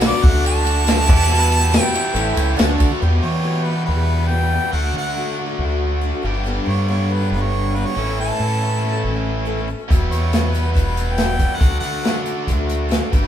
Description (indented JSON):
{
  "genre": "folk rock and heartland rock",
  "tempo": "140 BPM",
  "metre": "4/4",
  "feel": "straight",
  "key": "E dorian",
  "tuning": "A4 = 437 Hz",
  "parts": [
    { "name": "clear concert grand piano", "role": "accompaniment", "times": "0.0-3.0 s", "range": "F#4 to A5", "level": "-33 LUFS", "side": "right 6 dB", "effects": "none" },
    { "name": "picked swing-style acoustic guitar", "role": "accompaniment", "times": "0.0-13.3 s", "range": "E2 to A4", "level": "-27 LUFS", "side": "left 4 dB", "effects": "none" },
    { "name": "biting overdriven guitar", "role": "riff", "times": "0.0-13.3 s", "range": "E2 to G4", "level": "-24 LUFS", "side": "equal", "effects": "spring reverb" },
    { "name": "deep dub fingered electric bass", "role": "bass", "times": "0.0-13.3 s", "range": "E1 to E3", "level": "-20 LUFS", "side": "equal", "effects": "none" },
    { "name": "natural country drum kit", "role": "drums", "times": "0.0-2.9, 9.9-13.2 s", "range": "crash cymbal, hi-hat, kick drum, ride cymbal, snare drum", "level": "-18 LUFS", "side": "equal", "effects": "none" },
    { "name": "tambourine", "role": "percussion", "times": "0.0-2.9 s", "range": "none", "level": "-35 LUFS", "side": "left 7 dB", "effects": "none" },
    { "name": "bright harmonica", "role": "melody", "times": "0.1-12.2 s", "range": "B4 to A5", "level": "-24 LUFS", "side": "right 1 dB", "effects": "tape echo" },
    { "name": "pedal steel guitar", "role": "second line", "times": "1.1-2.9 s", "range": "D4 to D5", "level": "-27 LUFS", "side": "right 4 dB", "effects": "none" }
  ],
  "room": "moderate stone room reverb, RT60 1.2 s",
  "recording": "band playing live in one room",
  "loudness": "-16 LUFS",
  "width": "side -10 dB against mid",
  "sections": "0.0-3.0 A section; 3.0-13.3 B section",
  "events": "none",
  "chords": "0.2 D; 1.1 Em; 2.2 A; 2.6 D; 3.0 Em; 4.7 D; 6.2 G; 8.0 A; 9.9 Em; 11.6 D",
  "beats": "0.02 0.45 0.87 | 1.30 1.73 2.15 2.58 | 3.01 3.44 3.87 4.30 | 4.73 5.16 5.59 6.03 | 6.46 6.89 7.32 7.75 | 8.18 8.61 9.04 9.47 | 9.90 10.33 10.76 11.19 | 11.62 12.05 12.48 12.91"
}